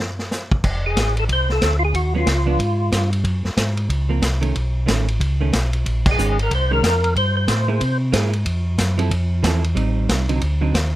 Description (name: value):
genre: soul jazz organ trio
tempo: 184 BPM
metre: 4/4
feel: swing 62% on 8ths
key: unclear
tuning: A4 = 436 Hz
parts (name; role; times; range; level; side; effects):
- vintage drum kit; drums; 0.2-10.8 s; crash cymbal, hi-hat, kick drum, ride cymbal, snare drum; -23 LUFS; equal; none
- mellow tonewheel organ; bass; 0.6-11.0 s; F1 to C3; -19 LUFS; equal; slow rotary speaker
- percussive tonewheel organ; melody; 0.9-3.1, 6.1-8.0 s; F4 to C5; -21 LUFS; left 1 dB; slow rotary speaker, chorus vibrato
- vintage hollow-body jazz guitar; accompaniment; 2.1-10.7 s; D3 to A4; -24 LUFS; right 5 dB; none
room: little or no reverb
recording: rough home demo mix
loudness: -17 LUFS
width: side -14 dB against mid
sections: 0.6-11.0 A section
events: band accent 6.0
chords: 0.0 N.C.; 0.6 F; 1.9 Db9; 2.6 Fmadd9; 3.2 Gbsus2; 4.6 B9; 5.9 Bbm11; 7.2 Gmadd9; 7.8 Caug7; 8.5 Fmaj7; 9.8 Am7b5; 10.4 D7b9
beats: 0.31 | 0.64 0.96 1.29 1.62 | 1.94 2.27 2.60 2.92 | 3.25 3.58 3.90 4.23 | 4.55 4.88 5.21 5.53 | 5.86 6.18 6.51 6.84 | 7.16 7.49 7.81 8.14 | 8.47 8.79 9.12 9.44 | 9.77 10.10 10.42 10.75